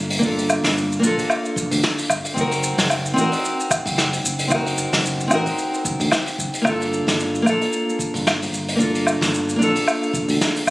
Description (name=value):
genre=sunset chillout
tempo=112 BPM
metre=4/4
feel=swing 56% on 16ths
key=G minor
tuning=A4 = 440 Hz
part: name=nylon-string guitar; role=accompaniment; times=0.0-10.7 s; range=Bb3 to Bb4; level=-21 LUFS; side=equal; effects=auto-pan, ping-pong delay
part: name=modern bright fingered electric bass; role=bass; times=0.0-10.7 s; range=F1 to D2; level=-26 LUFS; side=equal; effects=none
part: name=vintage brush drum kit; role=drums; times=0.1-10.7 s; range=hi-hat, shaker, snare drum, woodblock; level=-21 LUFS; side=equal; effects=none
part: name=electronic kick drum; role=drums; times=0.2-10.7 s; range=none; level=-31 LUFS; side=equal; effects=none
room=light reverb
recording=recorded on a phone in the room, studio ambience, compression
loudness=-18 LUFS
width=side -20 dB against mid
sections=0.0-10.7 A section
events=none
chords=0.0 Gm9; 2.4 D7b9b13/F# (rootless); 6.7 Gm9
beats=| 0.22 0.76 1.29 1.83 | 2.37 2.90 3.44 3.97 | 4.51 5.04 5.58 6.12 | 6.65 7.19 7.72 8.26 | 8.79 9.33 9.87 10.40